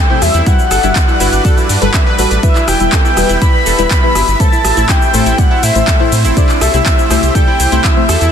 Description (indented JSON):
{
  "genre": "progressive house",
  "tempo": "122 BPM",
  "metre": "4/4",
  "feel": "straight",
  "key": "unclear",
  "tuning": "A4 = 442 Hz",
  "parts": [
    { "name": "soft octave-layered synth lead", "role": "melody", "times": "0.0-8.3 s", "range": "D5 to B5", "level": "-17 LUFS", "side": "left 2 dB", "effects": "chorus, phaser, sidechain pumping, dub echo" },
    { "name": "airy dreamy lead", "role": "second line", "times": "0.0-8.3 s", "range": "D6 to B6", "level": "-22 LUFS", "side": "right 1 dB", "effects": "chorus, sidechain pumping, tape echo" },
    { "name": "supersaw pad", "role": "sustained chords", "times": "0.0-8.3 s", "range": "G3 to E5", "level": "-21 LUFS", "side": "right 3 dB", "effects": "sidechain pumping" },
    { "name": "analog pluck", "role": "arpeggios", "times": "0.0-8.3 s", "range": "E4 to E5", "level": "-20 LUFS", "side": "equal", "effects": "chorus, cassette tape, sidechain pumping, tape echo" },
    { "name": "deep mellow chord stab", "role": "stabs", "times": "0.1-8.1 s", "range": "G2 to E5", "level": "-18 LUFS", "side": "left 3 dB", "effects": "chorus, phaser, sidechain pumping, tape echo" },
    { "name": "round analog bass", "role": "bass", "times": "0.2-8.3 s", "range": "E1 to A2", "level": "-15 LUFS", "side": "equal", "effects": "sidechain pumping" },
    { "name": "deep house drum kit", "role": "drums", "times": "0.2-8.3 s", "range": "handclaps, hi-hat, rim click, shaker", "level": "-17 LUFS", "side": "left 1 dB", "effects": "overdrive" },
    { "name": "electronic kick drum", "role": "drums", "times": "0.5-7.9 s", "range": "none", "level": "-12 LUFS", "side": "equal", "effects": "none" }
  ],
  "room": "light reverb, digital ambience",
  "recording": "dense, heavily limited modern master",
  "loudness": "-9 LUFS",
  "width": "side -8 dB against mid",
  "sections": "0.0-8.3 A section",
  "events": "none",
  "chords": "0.5 Gmaj7; 2.4 Em; 4.4 Am; 6.4 C6",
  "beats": "| 0.47 0.96 1.45 1.94 | 2.43 2.92 3.42 3.91 | 4.40 4.89 5.38 5.88 | 6.37 6.86 7.35 7.84"
}